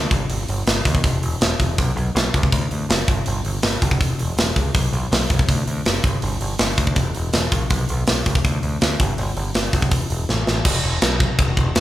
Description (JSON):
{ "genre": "punk rock", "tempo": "162 BPM", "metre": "4/4", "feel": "straight", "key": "unclear", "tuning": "A4 = 440 Hz", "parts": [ { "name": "growling picked electric bass", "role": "bass", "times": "0.0-11.8 s", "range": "E1 to D#2", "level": "-23 LUFS", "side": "equal", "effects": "overdrive" }, { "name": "tight metal drum kit", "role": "drums", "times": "0.1-11.8 s", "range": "crash cymbal, hi-hat, kick drum, snare drum", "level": "-19 LUFS", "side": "equal", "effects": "none" } ], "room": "light reverb", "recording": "band playing live in one room", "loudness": "-17 LUFS", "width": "side -14 dB against mid", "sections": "0.0-10.7 A section; 10.7-11.8 B section", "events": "drum fill 10.3-10.7", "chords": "none", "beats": "| 0.29 0.66 1.03 1.41 | 1.78 2.15 2.52 2.89 | 3.26 3.63 4.00 4.38 | 4.75 5.12 5.49 5.86 | 6.23 6.60 6.97 7.34 | 7.71 8.07 8.44 8.81 | 9.18 9.55 9.92 10.29 | 10.66 11.03 11.39 11.76" }